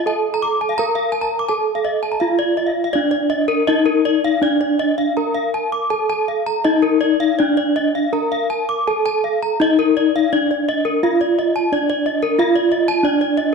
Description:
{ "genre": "gamelan", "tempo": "82 BPM", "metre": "4/4", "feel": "uneven beats", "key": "D pelog", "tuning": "A4 = 439 Hz", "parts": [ { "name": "gamelan-type bronze metallophone", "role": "melody", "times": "0.0-13.5 s", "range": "D4 to Bb4-20c", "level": "-17 LUFS", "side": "equal", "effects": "slapback echo" }, { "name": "gamelan-type bronze metallophone", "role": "arpeggios", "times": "0.0-13.5 s", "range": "Bb4-20c to D6", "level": "-20 LUFS", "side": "left 2 dB", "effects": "none" } ], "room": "wet recital hall reverb, RT60 1.4 s", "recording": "dark, warm production", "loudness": "-15 LUFS", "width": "side -4 dB against mid", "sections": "0.0-2.9 A section; 2.9-13.5 B section", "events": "none", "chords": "none", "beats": "| 0.07 0.77 1.49 2.21 | 2.95 3.69 4.43 5.17 | 5.91 6.65 7.39 8.13 | 8.87 9.61 10.32 11.02 | 11.71 12.38 13.04" }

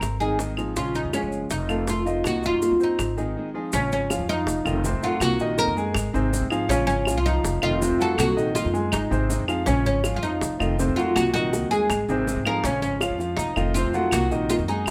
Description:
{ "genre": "latin, Cuban son and guajira", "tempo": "162 BPM", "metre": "4/4", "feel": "straight", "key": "Bb minor", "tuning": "A4 = 440 Hz", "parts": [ { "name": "oud", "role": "melody", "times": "0.0-14.9 s", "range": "Db4 to Bb4", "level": "-28 LUFS", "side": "equal", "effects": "none" }, { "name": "nylon-string guitar", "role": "accompaniment", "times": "0.0-14.9 s", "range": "C3 to Ab4", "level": "-32 LUFS", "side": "equal", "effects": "none" }, { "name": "warm concert grand piano", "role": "arpeggios", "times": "0.0-14.9 s", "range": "C3 to Ab5", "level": "-30 LUFS", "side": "equal", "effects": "none" }, { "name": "upright bass", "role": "bass", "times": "0.0-14.9 s", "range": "F1 to Ab2", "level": "-30 LUFS", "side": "equal", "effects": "none" }, { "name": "bongos", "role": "percussion", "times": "0.0-14.9 s", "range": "none", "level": "-36 LUFS", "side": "equal", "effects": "none" }, { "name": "claves", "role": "percussion", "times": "0.0-14.9 s", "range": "none", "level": "-34 LUFS", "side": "equal", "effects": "none" }, { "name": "maracas", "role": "percussion", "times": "0.0-14.9 s", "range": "none", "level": "-40 LUFS", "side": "equal", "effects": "none" } ], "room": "light reverb", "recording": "none", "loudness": "-24 LUFS", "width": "mono", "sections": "0.0-3.7 A section; 3.7-14.9 B section", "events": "break 3.4-3.7", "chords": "0.0 Ab; 0.8 Bbm7; 1.5 F7; 2.2 Cm7b5; 3.0 Ab; 3.7 Bbm7; 4.5 F7; 5.2 Cm7b5; 6.0 Ab; 6.7 Bbm7; 7.4 F7; 8.2 Cm7b5; 8.9 Ab; 9.7 Bbm7; 10.4 F7; 11.2 Cm7b5; 11.9 Ab; 12.6 Bbm7; 13.4 F7; 14.1 Cm7b5", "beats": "0.02 0.39 | 0.76 1.13 1.50 1.87 | 2.25 2.62 2.99 3.36 | 3.73 4.10 4.47 4.84 | 5.21 5.58 5.96 6.33 | 6.70 7.07 7.44 7.81 | 8.18 8.55 8.93 9.30 | 9.67 10.04 10.41 10.78 | 11.15 11.53 11.90 12.27 | 12.64 13.01 13.38 13.75 | 14.13 14.50 14.87" }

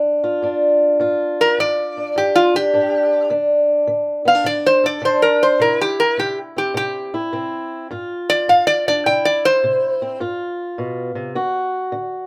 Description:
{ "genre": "acoustic country blues, solo or duo", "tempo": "104 BPM", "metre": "4/4", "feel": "swing 67% on 8ths", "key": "unclear", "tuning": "A4 = 442 Hz", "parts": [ { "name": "fingerpicked swing-style acoustic guitar", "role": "accompaniment", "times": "0.0-12.3 s", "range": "G2 to A4", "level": "-22 LUFS", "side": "equal", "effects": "none" }, { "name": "metal-body resonator slide guitar", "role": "melody", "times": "1.4-10.2 s", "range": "F4 to G5", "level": "-18 LUFS", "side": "equal", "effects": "none" } ], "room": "moderate studio ambience, RT60 0.5 s", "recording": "band playing live in one room", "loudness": "-18 LUFS", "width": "mono", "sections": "0.0-12.3 A section", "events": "resonator guitar played with a steel bar solo 0.0-12.3", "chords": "0.0 G7(no3); 3.3 D5; 5.6 C; 7.9 G5; 9.1 C; 10.2 G7; 11.3 D", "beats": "0.43 | 1.01 1.58 2.16 2.73 | 3.31 3.88 4.46 5.04 | 5.61 6.19 6.76 7.34 | 7.91 8.48 9.06 9.63 | 10.20 10.78 11.35 11.92" }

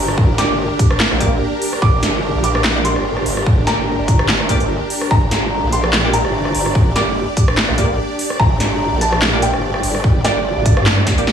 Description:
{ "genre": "heavy wobble dubstep", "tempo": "146 BPM", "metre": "4/4", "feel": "swing 55% on 16ths, half-time", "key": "G minor", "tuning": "A4 = 439 Hz", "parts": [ { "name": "felt-muted upright piano", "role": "melody", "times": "0.0-11.3 s", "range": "D5 to D6", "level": "-23 LUFS", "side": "equal", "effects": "digital delay" }, { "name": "supersaw pad", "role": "sustained chords", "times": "0.0-11.3 s", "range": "D4 to D5", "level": "-22 LUFS", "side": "right 1 dB", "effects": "sidechain pumping" }, { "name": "formant-sweep wobble bass", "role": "bass", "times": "0.0-11.2 s", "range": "G1 to G2", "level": "-20 LUFS", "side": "equal", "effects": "chorus, overdrive" }, { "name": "big-room dance drum kit", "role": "drums", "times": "0.1-11.3 s", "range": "handclaps, hi-hat, rim click, snare drum", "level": "-19 LUFS", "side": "equal", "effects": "none" }, { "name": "electronic kick drum", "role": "drums", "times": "0.2-11.2 s", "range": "none", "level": "-16 LUFS", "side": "equal", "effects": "none" }, { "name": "orchestra-hit-like synth stab", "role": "stabs", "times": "0.4-11.3 s", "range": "Bb3 to D5", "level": "-24 LUFS", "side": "equal", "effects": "built-in reverb, digital delay" } ], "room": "light reverb, digital ambience", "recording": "studio reverb", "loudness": "-13 LUFS", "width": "side -8 dB against mid", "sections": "0.0-11.3 A section", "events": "drum fill 11.1", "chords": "0.0 Gm", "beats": "| 0.18 0.59 1.00 1.41 | 1.82 2.23 2.64 3.05 | 3.46 3.88 4.29 4.70 | 5.11 5.52 5.93 6.34 | 6.75 7.16 7.57 7.99 | 8.40 8.81 9.22 9.63 | 10.04 10.45 10.86 11.27" }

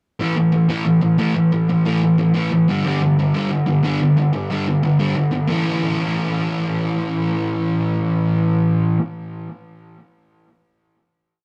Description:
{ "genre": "punk", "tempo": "182 BPM", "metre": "4/4", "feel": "straight", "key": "A mixolydian", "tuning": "A4 = 440 Hz", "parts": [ { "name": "sludgy distorted guitar", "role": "solo", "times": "0.2-9.0 s", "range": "G2 to E4", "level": "-19 LUFS", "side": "equal", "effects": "overdrive, digital delay" } ], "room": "light reverb", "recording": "rough rehearsal-room recording", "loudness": "-19 LUFS", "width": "mono", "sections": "0.2-5.5 verse; 5.5-8.1 final chord", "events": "none", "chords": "0.2 A5; 2.7 G5; 5.5 A", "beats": "| 0.20 0.53 0.86 1.19 | 1.52 1.85 2.18 2.51 | 2.84 3.17 3.50 3.83 | 4.16 4.49 4.82 5.15 | 5.48 5.81 6.14 6.47 | 6.80 7.13 7.46 7.79" }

